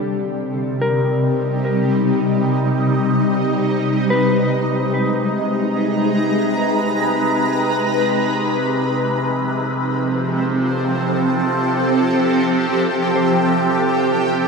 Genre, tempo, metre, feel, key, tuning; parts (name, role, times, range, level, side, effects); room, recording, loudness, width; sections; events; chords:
ambient; free time; A4 = 441 Hz
shimmering ambient pad; sustained chords; 0.0-14.5 s; C3 to Bb5; -17 LUFS; equal; chorus, built-in reverb, phaser
mellow electric guitar; arpeggios; 0.0-6.7, 13.2-14.1 s; A4 to D5; -26 LUFS; left 2 dB; tape echo
overtone-sweeping drone; drone; 0.0-14.5 s; C3; -24 LUFS; left 1 dB; chorus, built-in reverb
wet cathedral reverb, RT60 6.7 s; -16 LUFS; side -4 dB against mid
0.0-14.5 A section
fade-out on clean electric guitar 0.0-14.5
0.0 Cm7; 3.7 Abmadd9; 8.7 Fadd9; 13.7 Dsus4